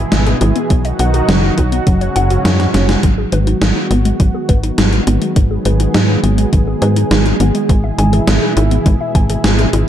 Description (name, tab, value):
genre	synthwave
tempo	103 BPM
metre	4/4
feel	straight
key	G# minor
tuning	A4 = 440 Hz
part	lush unison pad	sustained chords	0.0-9.9 s	G#2 to G#4	-18 LUFS	right 1 dB	chorus, sidechain pumping
part	warbly dusty pluck	arpeggios	0.0-9.8 s	F#3 to G#5	-20 LUFS	left 2 dB	chorus, ping-pong delay
part	tight sequencer bass	bass	0.0-9.8 s	F#1 to G#2	-14 LUFS	equal	tube saturation, sidechain pumping
part	gated 80s digital drum machine	drums	0.1-9.8 s	hi-hat, snare drum	-18 LUFS	equal	gated reverb, gated reverb snare, overdrive
part	electronic kick drum	drums	0.7-9.3 s	none	-13 LUFS	equal	overdrive
room	light reverb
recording	dark, warm production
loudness	-11 LUFS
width	side -10 dB against mid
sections	0.0-3.0 A section; 3.0-9.9 B section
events	drum fill 2.6-3.0; band accent 2.9; filter sweep on analog synth pad 3.0-9.9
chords	0.0 E/G#; 0.7 B; 1.9 F#sus2; 3.0 G#m7; 7.7 E/G#